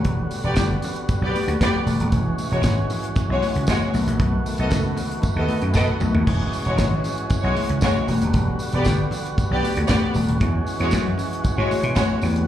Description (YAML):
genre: disco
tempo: 116 BPM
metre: 4/4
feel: straight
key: E major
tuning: A4 = 441 Hz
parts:
  - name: overdriven tonewheel organ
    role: sustained chords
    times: 0.0-12.5 s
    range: D3 to F#4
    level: -28 LUFS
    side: right 1 dB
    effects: wide subtle chorus
  - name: damped 70s drum kit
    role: drums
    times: 0.0-12.5 s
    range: crash cymbal, hi-hat, kick drum, snare drum, toms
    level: -24 LUFS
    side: equal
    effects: none
  - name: vintage slap bass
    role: bass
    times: 0.1-12.5 s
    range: D#1 to B2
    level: -22 LUFS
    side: equal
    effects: none
  - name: congas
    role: percussion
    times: 0.1-12.3 s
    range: none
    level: -28 LUFS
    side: left 4 dB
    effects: slapback echo
  - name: tambourine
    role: percussion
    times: 0.3-12.3 s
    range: none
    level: -41 LUFS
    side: right 4 dB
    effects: none
  - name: warm studio violin section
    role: second line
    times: 0.4-12.2 s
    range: G#3 to D#5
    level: -26 LUFS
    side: left 1 dB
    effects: slapback echo
room: little or no reverb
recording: live gig heard through the venue's PA, club reverb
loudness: -19 LUFS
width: side -11 dB against mid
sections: 0.0-6.3 A section; 6.3-12.5 A section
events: drum fill 5.8-6.3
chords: 0.0 Gmaj7; 2.1 E69; 3.9 B7; 6.3 E69; 8.1 Gmaj7; 10.4 E69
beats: | 0.05 0.57 1.09 1.60 | 2.12 2.64 3.16 3.68 | 4.20 4.72 5.24 5.75 | 6.27 6.79 7.31 7.82 | 8.34 8.86 9.38 9.89 | 10.41 10.93 11.44 11.96